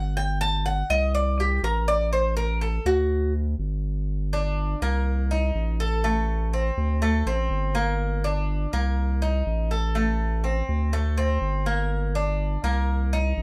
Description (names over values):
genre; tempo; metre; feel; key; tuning
latin, Cuban son and guajira; 123 BPM; 4/4; straight; G harmonic minor; A4 = 445 Hz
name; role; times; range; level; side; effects
Cuban tres; arpeggios; 0.0-13.4 s; A3 to A5; -29 LUFS; equal; none
saturated sub bass; bass; 0.0-13.4 s; G1 to D2; -27 LUFS; equal; none
room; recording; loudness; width
light reverb; dark, warm production; -25 LUFS; mono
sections
0.0-4.1 A section; 4.1-13.4 B section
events
Cuban tres solo 0.0-4.1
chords
0.2 Am7b5/G; 1.1 Amadd11; 3.1 G5; 4.1 Gm; 5.1 Cm7; 6.0 Amadd11; 7.0 D5; 8.0 Gm; 9.0 Cm7; 10.0 Amadd11; 10.9 D5; 11.9 Gm; 12.9 Cm7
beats
| 0.17 0.66 1.15 1.64 | 2.13 2.62 3.11 3.60 | 4.09 4.58 5.07 5.55 | 6.04 6.53 7.02 7.51 | 8.00 8.49 8.98 9.47 | 9.96 10.45 10.93 11.42 | 11.91 12.40 12.89 13.38